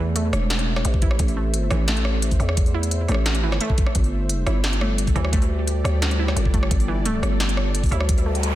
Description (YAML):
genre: half-time drum and bass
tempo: 174 BPM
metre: 4/4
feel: half-time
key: A minor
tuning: A4 = 440 Hz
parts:
  - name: dark analog pad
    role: sustained chords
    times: 0.0-8.6 s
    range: G3 to E5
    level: -31 LUFS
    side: left 1 dB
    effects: chorus, sidechain pumping
  - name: warbly dusty pluck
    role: arpeggios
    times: 0.0-8.4 s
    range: E3 to E4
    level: -30 LUFS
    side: right 2 dB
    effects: chorus, digital delay
  - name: growling 808-style bass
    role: bass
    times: 0.0-8.6 s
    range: E1 to E2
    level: -22 LUFS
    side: equal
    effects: none
  - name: industrial drum kit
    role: drums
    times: 0.2-8.5 s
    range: hi-hat, rim click, snare drum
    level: -27 LUFS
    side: equal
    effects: none
  - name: electronic kick drum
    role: drums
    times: 0.9-8.2 s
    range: none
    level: -21 LUFS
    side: equal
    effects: overdrive
  - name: noise sweep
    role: sound effects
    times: 8.2-8.6 s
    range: none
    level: -28 LUFS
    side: left 4 dB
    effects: none
room: little or no reverb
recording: dense, heavily limited modern master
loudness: -19 LUFS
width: side -14 dB against mid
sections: 0.0-8.6 A section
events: noise sweep 8.2-8.6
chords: 0.0 Am; 3.9 Gsus2